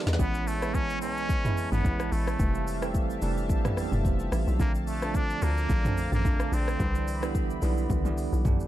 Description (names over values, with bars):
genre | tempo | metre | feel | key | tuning
amapiano | 109 BPM | 4/4 | swing 55% on 16ths | unclear | A4 = 439 Hz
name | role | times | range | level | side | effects
bell-like tine electric piano | accompaniment | 0.0-8.7 s | D3 to C5 | -33 LUFS | right 5 dB | medium stereo tremolo
warm analog pad | sustained chords | 0.0-8.7 s | G#3 to C6 | -38 LUFS | equal | chorus
hollow log drum bass | bass | 0.1-8.6 s | F1 to E2 | -29 LUFS | equal | none
deep house drum kit | drums | 0.1-8.7 s | hi-hat, kick drum, rim click, shaker, snare drum, toms | -29 LUFS | equal | none
trumpet with straight mute | melody | 0.2-7.4 s | A3 to D4 | -34 LUFS | equal | digital delay
room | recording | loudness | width
digital ambience | dark, warm production | -25 LUFS | side -14 dB against mid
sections
0.0-8.7 A section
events
drum fill 0.0, 7.9-8.7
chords
0.2 Amaj9; 2.4 Fmaj9; 4.6 Bbmaj9; 6.8 Cmaj9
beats
| 0.19 0.74 1.29 1.84 | 2.39 2.94 3.50 4.05 | 4.60 5.15 5.70 6.25 | 6.80 7.35 7.90 8.45